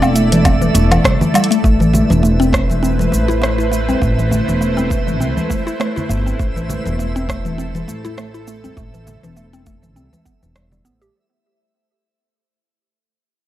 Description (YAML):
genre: organic downtempo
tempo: 101 BPM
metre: 4/4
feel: swing 56% on 16ths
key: A minor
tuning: A4 = 440 Hz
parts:
  - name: bowed-like drone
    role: sustained chords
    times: 0.0-11.1 s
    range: A3 to D5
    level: -22 LUFS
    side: left 1 dB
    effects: built-in reverb, sidechain pumping
  - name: mallet-like synth pluck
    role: arpeggios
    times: 0.0-11.1 s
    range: E3 to G4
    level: -19 LUFS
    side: equal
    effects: chorus, phaser, analog delay
  - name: upright bass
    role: bass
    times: 0.0-11.1 s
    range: E1 to C2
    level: -18 LUFS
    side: equal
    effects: sidechain pumping
  - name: deep house drum kit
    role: drums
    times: 0.0-11.1 s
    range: cabasa, hi-hat, rim click, woodblock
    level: -21 LUFS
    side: equal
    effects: overdrive, small room ambience
  - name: congas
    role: percussion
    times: 0.0-11.0 s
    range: none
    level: -25 LUFS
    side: right 2 dB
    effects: none
  - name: twinkling granular texture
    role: texture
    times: 0.0-11.2 s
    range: E5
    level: -30 LUFS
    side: right 3 dB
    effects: built-in reverb
  - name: electronic kick drum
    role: drums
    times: 0.5-10.4 s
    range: none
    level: -18 LUFS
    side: equal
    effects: small room ambience
room: moderate recital hall reverb, RT60 1.5 s, digital ambience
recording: dry, gritty hardware recording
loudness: -13 LUFS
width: side -13 dB against mid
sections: 0.0-1.6 A section; 1.6-11.1 B section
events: fade-out 1.6-11.1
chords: 0.0 Am; 1.6 Amadd9